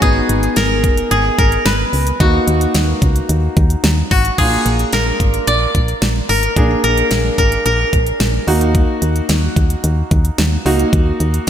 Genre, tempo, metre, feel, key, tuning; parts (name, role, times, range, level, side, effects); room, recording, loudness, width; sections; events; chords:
synth-pop; 110 BPM; 4/4; straight; Eb minor; A4 = 439 Hz
koto; melody; 0.0-9.5 s; Gb4 to D5; -18 LUFS; equal; ping-pong delay
bright grand piano; accompaniment; 0.0-11.5 s; Bb3 to Ab4; -20 LUFS; right 1 dB
solid FM bass; bass; 0.0-11.5 s; Gb1 to Eb2; -17 LUFS; equal
pop drum kit; drums; 0.0-11.5 s; crash cymbal, hi-hat, kick drum, snare drum; -17 LUFS; equal
moderate lush hall reverb, RT60 2.4 s; dreamy mix soaked in reverb; -12 LUFS; side -9 dB against mid
0.0-4.4 A section; 4.4-11.5 B section
0.0 Abm; 2.2 Ebm; 4.4 Bb; 8.5 Ebm